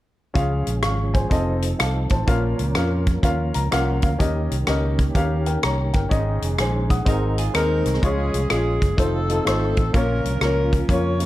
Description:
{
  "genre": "uptempo gospel",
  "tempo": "125 BPM",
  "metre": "4/4",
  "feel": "swing 65% on 8ths",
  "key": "Db major",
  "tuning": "A4 = 440 Hz",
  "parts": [
    { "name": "warm upright piano", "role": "accompaniment", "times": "0.3-11.3 s", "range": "Ab2 to Eb6", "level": "-25 LUFS", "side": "left 2 dB", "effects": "none" },
    { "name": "tonewheel organ", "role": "sustained chords", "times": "0.3-11.3 s", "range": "Db3 to Bb4", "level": "-29 LUFS", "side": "right 2 dB", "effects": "slow rotary speaker, chorus vibrato" },
    { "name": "fingered electric bass", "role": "bass", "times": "0.4-11.3 s", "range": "F1 to F2", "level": "-23 LUFS", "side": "equal", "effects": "none" },
    { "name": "natural country drum kit", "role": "drums", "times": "0.4-11.3 s", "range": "hi-hat, kick drum, rim click", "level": "-23 LUFS", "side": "equal", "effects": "none" },
    { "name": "clean electric guitar", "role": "second line", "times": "7.1-8.0 s", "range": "C4 to Bb4", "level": "-31 LUFS", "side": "right 7 dB", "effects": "none" },
    { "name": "mellow saxophone section", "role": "melody", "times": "7.6-11.3 s", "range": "C4 to Db5", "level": "-25 LUFS", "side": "left 1 dB", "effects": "none" }
  ],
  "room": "light reverb, small room ambience",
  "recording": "dark, warm production",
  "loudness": "-18 LUFS",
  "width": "side -15 dB against mid",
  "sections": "0.4-8.0 A section; 8.0-11.3 B section",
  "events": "upright piano fill 3.2-4.2",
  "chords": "0.4 Db; 1.3 F7; 2.3 Bbm; 4.2 Eb7; 6.1 Absus4; 7.1 Ab; 8.0 Db; 9.0 F7; 9.9 Bbm"
}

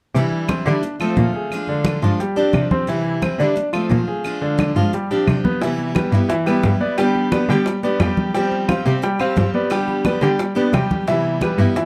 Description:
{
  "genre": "latin, Cuban son and guajira",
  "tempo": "176 BPM",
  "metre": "4/4",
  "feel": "straight",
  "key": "C major",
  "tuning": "A4 = 440 Hz",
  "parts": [
    { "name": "picked steel-string acoustic guitar", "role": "accompaniment", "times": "0.1-11.8 s", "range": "C3 to G4", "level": "-25 LUFS", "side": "equal", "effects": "none" },
    { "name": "clear concert grand piano", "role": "arpeggios", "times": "0.1-11.9 s", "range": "D3 to G5", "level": "-23 LUFS", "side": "equal", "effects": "none" },
    { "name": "rich cello", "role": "bass", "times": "0.1-11.7 s", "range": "F2 to D3", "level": "-22 LUFS", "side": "equal", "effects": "none" },
    { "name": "congas", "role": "percussion", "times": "0.1-11.9 s", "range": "none", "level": "-26 LUFS", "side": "equal", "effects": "none" },
    { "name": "claves", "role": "percussion", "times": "0.5-11.6 s", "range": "none", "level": "-35 LUFS", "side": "equal", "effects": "none" },
    { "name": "bongos", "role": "percussion", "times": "5.6-11.9 s", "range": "none", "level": "-31 LUFS", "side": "equal", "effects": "none" }
  ],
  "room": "light reverb",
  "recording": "dark, warm production",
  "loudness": "-19 LUFS",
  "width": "mono",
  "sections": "0.1-5.6 A section; 5.6-11.9 B section",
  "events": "none",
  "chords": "0.1 Cadd9; 0.8 Dm7; 1.5 Bb7 (rootless); 2.2 G7sus4; 2.9 Cadd9; 3.6 Dm7; 4.2 Bb7 (rootless); 4.9 G7sus4; 5.6 Cmaj7; 7.0 G; 8.3 Fsus2; 9.7 G; 11.1 Cmaj7"
}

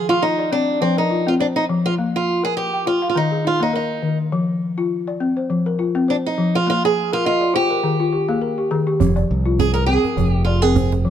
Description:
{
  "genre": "west african traditional, West African string and xylophone music",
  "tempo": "102 BPM",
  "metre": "4/4",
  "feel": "swing 55% on 16ths",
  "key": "F dorian",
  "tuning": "A4 = 440 Hz",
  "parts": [
    { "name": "picked old ladder-braced acoustic guitar", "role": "melody", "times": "0.0-10.9 s", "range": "C4 to Bb4", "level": "-20 LUFS", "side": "right 3 dB", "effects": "none" },
    { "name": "balafon", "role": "arpeggios", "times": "0.1-11.1 s", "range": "Eb3 to G5", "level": "-20 LUFS", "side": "left 3 dB", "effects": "none" },
    { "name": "modern bright fingered electric bass", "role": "bass", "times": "9.0-11.1 s", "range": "F1 to C2", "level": "-19 LUFS", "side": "right 1 dB", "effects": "none" },
    { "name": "djembe", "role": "percussion", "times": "9.0-11.1 s", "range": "none", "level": "-23 LUFS", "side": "right 7 dB", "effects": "none" }
  ],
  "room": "light reverb",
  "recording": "dark, warm production",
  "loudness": "-17 LUFS",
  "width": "side -9 dB against mid",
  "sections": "0.0-9.0 A section; 9.0-11.1 B section",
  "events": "balafon fill 7.1-9.0; steel-string acoustic guitar solo 9.0-11.1",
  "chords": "0.0 F5; 2.0 Bb5; 3.2 Eb5; 4.3 F5; 6.7 Bb5; 7.8 Eb; 9.0 Fm"
}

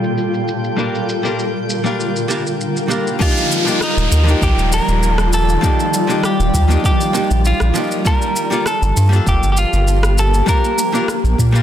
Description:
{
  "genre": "sunset chillout",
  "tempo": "99 BPM",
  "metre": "4/4",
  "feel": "straight",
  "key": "Eb lydian",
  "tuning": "A4 = 438 Hz",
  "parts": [
    { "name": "archtop guitar, miked and amplified", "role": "accompaniment", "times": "0.0-11.6 s", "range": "F3 to A5", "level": "-22 LUFS", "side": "equal", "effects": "auto-pan, digital delay" },
    { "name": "shimmering ambient pad", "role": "sustained chords", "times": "0.0-11.6 s", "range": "Bb2 to A5", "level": "-21 LUFS", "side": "left 1 dB", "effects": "chorus, built-in reverb" },
    { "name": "electronic shaker and rim click", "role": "drums", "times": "0.0-11.6 s", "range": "none", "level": "-26 LUFS", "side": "equal", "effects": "low-pass filter on perc, studio reverb, low-pass filter on snare" },
    { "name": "drifting glass-harmonics texture", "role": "texture", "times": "0.0-3.2 s", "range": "G5 to G6", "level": "-30 LUFS", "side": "right 3 dB", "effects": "chorus, built-in reverb" },
    { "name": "clean electric guitar", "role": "melody", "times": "3.2-11.4 s", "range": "Eb4 to Bb4", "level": "-20 LUFS", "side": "equal", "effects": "digital delay" },
    { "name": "electronic kick drum", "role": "drums", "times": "3.2-11.5 s", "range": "none", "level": "-17 LUFS", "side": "equal", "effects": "studio reverb" },
    { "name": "downlifter", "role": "sound effects", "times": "3.2-8.1 s", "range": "none", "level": "-24 LUFS", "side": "equal", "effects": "none" },
    { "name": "round analog bass", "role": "bass", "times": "4.0-11.6 s", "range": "Eb1 to Bb2", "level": "-14 LUFS", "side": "equal", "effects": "none" }
  ],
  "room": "light reverb, digital ambience",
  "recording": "dense, heavily limited modern master, low-pass filter",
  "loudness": "-14 LUFS",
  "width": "side -10 dB against mid",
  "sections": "0.0-3.2 A section; 3.2-11.6 B section",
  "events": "filter sweep on ambient pad 0.0-3.2; filter sweep 0.0-3.2",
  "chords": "0.0 Gm9; 0.8 Bb6; 3.2 Ebmaj9; 8.1 Gm9; 10.5 Bb6"
}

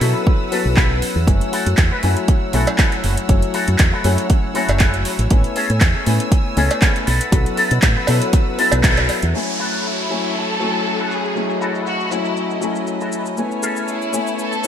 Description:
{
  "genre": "nu-disco, nu disco",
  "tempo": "119 BPM",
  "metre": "4/4",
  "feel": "swing 54% on 16ths",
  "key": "F# minor",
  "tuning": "A4 = 440 Hz",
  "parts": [
    { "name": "warm concert grand piano", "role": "accompaniment", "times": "0.0-14.7 s", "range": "F#3 to G#5", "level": "-22 LUFS", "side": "left 3 dB", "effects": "analog chorus, sidechain pumping, digital delay" },
    { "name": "rich studio violin section", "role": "sustained chords", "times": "0.0-14.7 s", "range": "A3 to E6", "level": "-29 LUFS", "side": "equal", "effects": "sidechain pumping" },
    { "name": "electric guitar with an envelope filter", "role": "riff", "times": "0.0-14.7 s", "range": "B3 to B4", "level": "-24 LUFS", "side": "left 2 dB", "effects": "ensemble chorus, low-pass filter, digital delay" },
    { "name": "fingered electric bass with an envelope filter", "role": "bass", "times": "0.0-9.3 s", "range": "F#1 to B2", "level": "-18 LUFS", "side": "equal", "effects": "tube saturation, sidechain pumping" },
    { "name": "pop drum kit", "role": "drums", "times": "0.0-14.7 s", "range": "handclaps, hi-hat, shaker", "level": "-23 LUFS", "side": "right 1 dB", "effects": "overdrive, low-pass filter on hats, low-pass filter on snare, low-pass filter on perc, low-pass filter on room, gated reverb" },
    { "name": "electronic kick drum", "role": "drums", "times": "0.3-8.9 s", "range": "none", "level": "-15 LUFS", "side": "equal", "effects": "overdrive" },
    { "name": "cowbell", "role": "percussion", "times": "2.7-9.2 s", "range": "none", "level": "-25 LUFS", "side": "right 3 dB", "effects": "none" },
    { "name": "downlifter", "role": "sound effects", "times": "9.3-13.4 s", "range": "none", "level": "-27 LUFS", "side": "right 1 dB", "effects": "none" },
    { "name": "clear studio violin section", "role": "melody", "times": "9.9-14.7 s", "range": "E4 to A4", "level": "-24 LUFS", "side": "equal", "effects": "vintage 12-bit sampler grit, digital delay" }
  ],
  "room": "light reverb, small room ambience",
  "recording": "bright 1980s-style digital production",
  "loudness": "-15 LUFS",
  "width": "side -9 dB against mid",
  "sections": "0.0-9.3 A section; 9.3-14.7 B section",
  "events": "band accent 8.8; filter sweep on drum 9.3-14.7; filter sweep on clean electric guitar 9.3-14.7",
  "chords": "0.0 B7sus4; 1.3 F#m7; 5.3 Amaj7; 7.1 B7sus4; 9.3 F#m7; 13.4 Amaj7"
}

